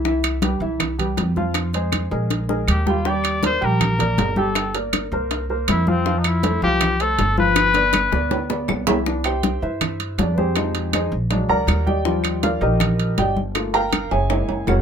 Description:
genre	Afro-Cuban jazz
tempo	160 BPM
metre	4/4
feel	straight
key	unclear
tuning	A4 = 436 Hz
part	warm baby grand piano	accompaniment	0.0-14.8 s	E3 to Bb5	-23 LUFS	equal	none
part	upright bass	bass	0.0-14.8 s	F1 to G2	-23 LUFS	right 1 dB	none
part	congas	percussion	0.0-14.8 s	none	-27 LUFS	left 1 dB	none
part	bongos	percussion	0.1-14.8 s	none	-28 LUFS	left 4 dB	none
part	claves	percussion	0.2-14.8 s	none	-30 LUFS	left 1 dB	none
part	timbales	percussion	0.2-14.8 s	none	-26 LUFS	right 8 dB	none
part	warm trumpet	melody	2.7-8.7 s	C4 to D5	-21 LUFS	left 3 dB	none
room	light reverb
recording	minimal, uncompressed stereo recording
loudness	-18 LUFS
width	side -7 dB against mid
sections	0.0-9.1 A section; 9.1-14.8 B section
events	drum fill 2.3-3.1, 7.6-9.1, 14.1-14.8; grand piano solo 9.1-14.8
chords	0.1 Cmaj7; 1.6 Fm; 2.3 Fm11/Bb; 3.1 Ebmaj7; 4.6 Gm; 5.3 C7sus4; 6.1 Fmaj7; 7.6 G7; 9.1 Cmaj7; 10.6 Fm9; 11.3 Bb7alt; 12.1 Ebmaj9; 13.6 Gm7; 14.3 F#9

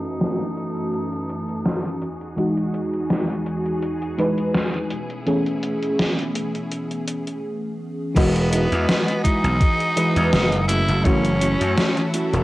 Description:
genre	vaporwave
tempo	83 BPM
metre	4/4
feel	swing 54% on 16ths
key	E major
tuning	A4 = 441 Hz
part	raspy tenor saxophone	melody	0.0-2.0, 8.2-12.1 s	B3 to E4	-26 LUFS	equal	cassette tape, tape echo
part	FM electric piano with soft pad layer	accompaniment	0.0-12.4 s	E3 to D#5	-23 LUFS	equal	tremolo, wide subtle chorus, cassette tape, analog delay
part	bright studio string section	sustained chords	0.0-12.4 s	E2 to D#5	-33 LUFS	equal	none
part	gated 80s digital drum machine	drums	0.0-12.4 s	crash cymbal, hi-hat, snare drum	-24 LUFS	equal	gated reverb, gated reverb snare, overdrive, cassette tape
part	gritty slap bass	bass	8.2-12.4 s	E1 to F#2	-21 LUFS	equal	overdrive
part	electronic kick drum	drums	8.2-11.2 s	none	-18 LUFS	equal	overdrive, cassette tape
part	mellow electric guitar	riff	8.5-12.3 s	G#3 to F#4	-28 LUFS	right 2 dB	lush chorus
room	light reverb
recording	home recording on cassette, low-pass filter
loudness	-19 LUFS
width	side -17 dB against mid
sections	0.0-8.2 A section; 8.2-12.4 B section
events	filter sweep 0.0-8.2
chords	0.0 F#m7; 2.0 Emaj9; 4.9 B13sus4; 8.2 Emaj9; 10.7 F#m7

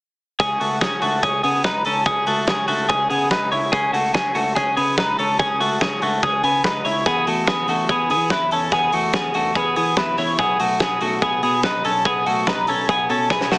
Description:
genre	jangly indie pop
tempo	144 BPM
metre	4/4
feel	straight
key	unclear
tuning	A4 = 440 Hz
part	twelve-string electric guitar	arpeggios	0.4-13.6 s	A3 to C#5	-18 LUFS	equal	spring reverb
part	vintage muted picked electric bass	bass	0.4-13.6 s	B1 to E3	-29 LUFS	equal	none
part	big rock drum kit	drums	0.4-13.6 s	hi-hat, kick drum, snare drum	-24 LUFS	equal	none
room	moderate club reverb, RT60 0.5 s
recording	heavily compressed radio sound, multiband compression, small speaker sound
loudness	-17 LUFS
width	side -28 dB against mid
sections	0.4-13.6 A section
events	drum fill 13.3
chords	0.4 C#madd9; 7.1 E; 10.4 B

